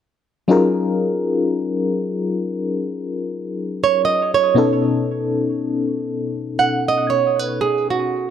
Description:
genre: R&B.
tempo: 59 BPM.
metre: 4/4.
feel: swing 58% on 16ths.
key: F# major.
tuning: A4 = 440 Hz.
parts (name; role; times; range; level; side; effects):
FM electric piano with tremolo; accompaniment; 0.5-8.3 s; B2 to A#4; -20 LUFS; left 3 dB; none.
flamenco guitar; arpeggios; 3.8-8.3 s; F#4 to F#5; -17 LUFS; right 7 dB; analog delay.
room: wet spring reverb, RT60 1.2 s, small room ambience.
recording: echo-heavy mix.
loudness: -17 LUFS.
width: side -9 dB against mid.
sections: 0.5-8.3 A section.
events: none.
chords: 0.5 F#maj13; 4.6 B7.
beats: | 0.49 1.51 2.52 3.54 | 4.56 5.58 6.59 7.61.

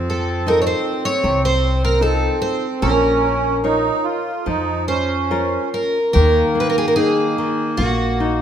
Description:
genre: fado-style ballad.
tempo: 70-79 BPM.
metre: 4/4.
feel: rubato.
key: Bb harmonic minor.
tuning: A4 = 439 Hz.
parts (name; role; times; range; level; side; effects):
accordion; second line; 0.0-8.4 s; Bb3 to F4; -22 LUFS; right 3 dB; light tremolo tuning.
nylon-string guitar; accompaniment; 0.0-8.4 s; C3 to Db5; -24 LUFS; left 2 dB; none.
upright bass; bass; 0.0-8.4 s; Bb1 to F2; -21 LUFS; equal; none.
picked twelve-string acoustic guitar; melody; 0.1-8.4 s; Gb4 to Db5; -20 LUFS; right 1 dB; none.
room: moderate scoring stage reverb, RT60 1.6 s.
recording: minimal, uncompressed stereo recording.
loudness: -16 LUFS.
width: side -9 dB against mid.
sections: 0.0-6.1 A section; 6.1-8.4 B section.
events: none.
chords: 0.0 F7; 2.8 Bbm; 6.1 Ebm.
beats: 0.48 1.25 2.03 | 2.83 3.65 4.46 5.31 | 6.15 6.97 7.79.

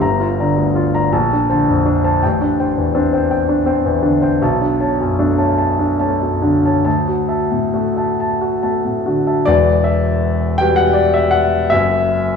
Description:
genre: classical, impressionist solo piano.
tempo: 45-56 BPM (dotted quarters).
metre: 6/8.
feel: rubato.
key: E dorian from 4.4 s.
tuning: A4 = 440 Hz.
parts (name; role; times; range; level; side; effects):
warm grand piano; solo; 0.0-12.4 s; E1 to Bb5; -13 LUFS; left 1 dB; none.
room: moderate scoring stage reverb, RT60 2.0 s.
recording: none.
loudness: -13 LUFS.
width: side -6 dB against mid.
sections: 0.0-9.5 A section; 9.5-12.4 B section.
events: none.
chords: 0.0 Gm7; 1.1 Bbmaj9; 2.2 Am7; 4.4 Bm9; 6.9 Dadd9; 9.5 Emadd9; 11.7 F#7(no3).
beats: | 0.02 1.12 | 2.23 3.31 | 4.41 5.59 | 6.87 8.19 | 9.49 10.60 | 11.71.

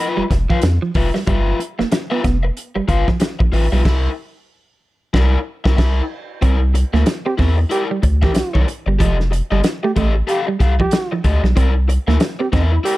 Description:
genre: funk.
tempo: 93 BPM.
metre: 4/4.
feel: swing 60% on 16ths.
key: unclear.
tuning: A4 = 437 Hz.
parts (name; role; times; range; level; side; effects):
overdriven semi-hollow guitar; accompaniment; 0.0-13.0 s; E4 to F5; -23 LUFS; left 4 dB; none.
clean electric guitar; riff; 0.2-12.7 s; E3 to C4; -23 LUFS; right 5 dB; spring reverb.
round analog bass; bass; 0.2-12.8 s; F1 to F2; -16 LUFS; equal; none.
warm soul drum kit; drums; 0.3-13.0 s; crash cymbal, hi-hat, kick drum, snare drum; -19 LUFS; equal; none.
breathy trombone; second line; 7.3-13.0 s; G4; -21 LUFS; right 2 dB; none.
room: studio reverb.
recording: dark, warm production.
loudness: -15 LUFS.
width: side -18 dB against mid.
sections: 0.0-6.4 A section; 6.4-13.0 B section.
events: band accent 3.9-6.4.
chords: 0.0 G13; 3.9 C7; 6.4 C9; 9.0 F9; 11.6 C9.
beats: 0.63 | 1.28 1.92 2.57 3.21 | 3.86 4.50 5.14 5.79 | 6.43 7.07 7.71 8.36 | 9.00 9.64 10.28 10.93 | 11.57 12.21 12.85.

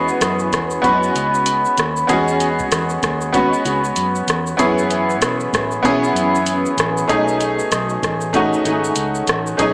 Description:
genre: indie pop, bedroom pop.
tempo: 96 BPM.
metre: 4/4.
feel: swing 60% on 16ths.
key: E major.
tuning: A4 = 441 Hz.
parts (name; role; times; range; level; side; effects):
bright upright piano; accompaniment; 0.0-9.7 s; A3 to B4; -17 LUFS; equal; cassette tape.
flamenco guitar; accompaniment; 0.0-9.7 s; F#2 to G#4; -22 LUFS; equal; ensemble chorus, warbly pitch drift.
vintage muted fingered electric bass; bass; 0.0-9.7 s; G#1 to B2; -25 LUFS; equal; none.
soft vintage rhythm box; drums; 0.1-9.7 s; hi-hat, kick drum, rim click, shaker; -22 LUFS; equal; none.
room: moderate plate reverb, RT60 2.1 s.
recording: small speaker sound.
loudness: -15 LUFS.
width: side -30 dB against mid.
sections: 0.0-9.7 A section.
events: none.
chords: 0.0 E69; 4.6 F#7sus4; 7.1 B13.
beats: 0.22 0.84 1.47 | 2.10 2.72 3.35 3.97 | 4.60 5.22 5.85 6.47 | 7.10 7.72 8.35 8.97 | 9.60.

